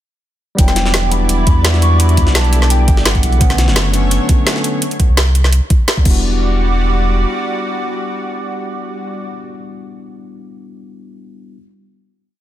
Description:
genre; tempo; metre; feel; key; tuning
liquid drum and bass; 170 BPM; 4/4; straight; E dorian; A4 = 440 Hz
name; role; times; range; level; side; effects
hollow clarinet-like synth lead; melody; 0.6-4.1 s; F#5 to C#6; -22 LUFS; equal; wide subtle chorus, digital delay
tine electric piano; accompaniment; 0.6-11.6 s; D3 to A4; -22 LUFS; left 2 dB; digital delay
lush unison pad; sustained chords; 0.6-9.3 s; D3 to D5; -23 LUFS; right 1 dB; chorus, sidechain pumping
warm sub bass; bass; 0.6-7.3 s; E1 to E2; -13 LUFS; equal; none
electronic kick drum; drums; 0.6-6.1 s; none; -12 LUFS; equal; overdrive, studio ambience
garage drum kit; drums; 0.6-6.1 s; crash cymbal, hi-hat, snare drum; -19 LUFS; equal; overdrive, studio ambience
jungle sampler-style drum kit; drums; 0.6-4.7 s; hi-hat, snare drum; -23 LUFS; equal; high-pass filter on hats, studio ambience, soft clipping on snare, high-pass filter on snare
room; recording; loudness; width
light reverb; dense, heavily limited modern master; -12 LUFS; side -13 dB against mid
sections
0.6-6.2 drop; 6.2-9.1 final hit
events
drop 0.6-6.2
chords
0.6 Em9; 3.4 Bm9; 4.8 N.C.; 6.1 Em9

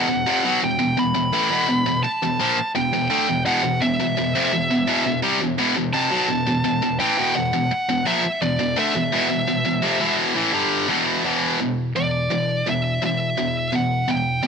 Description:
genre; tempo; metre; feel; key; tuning
metal; 85 BPM; 4/4; straight; E minor; A4 = 442 Hz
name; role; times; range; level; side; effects
high-gain lead guitar; melody; 0.0-14.5 s; D5 to B5; -23 LUFS; equal; distortion
tight distorted guitar; riff; 0.0-14.5 s; E2 to A3; -20 LUFS; equal; distortion
room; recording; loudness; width
light reverb, digital ambience; none; -18 LUFS; side -6 dB against mid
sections
0.0-11.3 A section; 11.3-14.5 B section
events
none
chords
0.0 E5

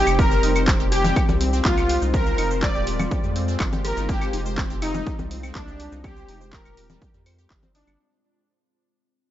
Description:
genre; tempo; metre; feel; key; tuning
melodic techno; 123 BPM; 4/4; straight; unclear; A4 = 440 Hz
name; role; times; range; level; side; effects
soft supersaw; melody; 0.0-7.9 s; D4 to D5; -26 LUFS; equal; sidechain pumping, tape echo
dark detuned synth bell; second line; 0.0-7.9 s; D4 to D5; -34 LUFS; left 2 dB; none
deep dark ambient pad; sustained chords; 0.0-8.0 s; G3 to F4; -31 LUFS; left 4 dB; chorus, built-in reverb, sidechain pumping
round analog bass; bass; 0.0-8.0 s; Eb1 to F2; -26 LUFS; equal; sidechain pumping
granular cloud pad; texture; 0.1-8.0 s; Ab3 to G5; -36 LUFS; left 3 dB; none
wide unison pluck; arpeggios; 0.1-7.9 s; G3 to C5; -32 LUFS; right 1 dB; phaser, sidechain pumping, tape echo
techno drum kit; drums; 0.1-8.0 s; claves, congas, handclaps, hi-hat, shaker; -28 LUFS; left 1 dB; overdrive, studio reverb
electronic kick drum; drums; 0.2-7.6 s; none; -23 LUFS; equal; overdrive, studio reverb
room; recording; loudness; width
digital ambience; dry, gritty hardware recording, nothing above 7.8 kHz; -19 LUFS; side -12 dB against mid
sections
0.0-8.0 A section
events
drop 0.0-8.0; fade-out 0.2-8.0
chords
0.2 Fm

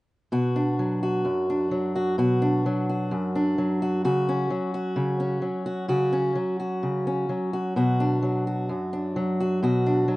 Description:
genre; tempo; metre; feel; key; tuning
folk; 129 BPM; 4/4; straight; B minor; A4 = 440 Hz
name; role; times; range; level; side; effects
fingerpicked acoustic archtop guitar; accompaniment; 0.3-10.2 s; F#2 to F#4; -22 LUFS; equal; none
room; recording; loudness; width
moderate studio reverb, RT60 0.6 s; rough home demo mix, nothing above 10.6 kHz; -23 LUFS; side -20 dB against mid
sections
0.3-10.2 A section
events
none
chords
0.3 Bm; 4.0 F#5/C#; 7.8 Bm

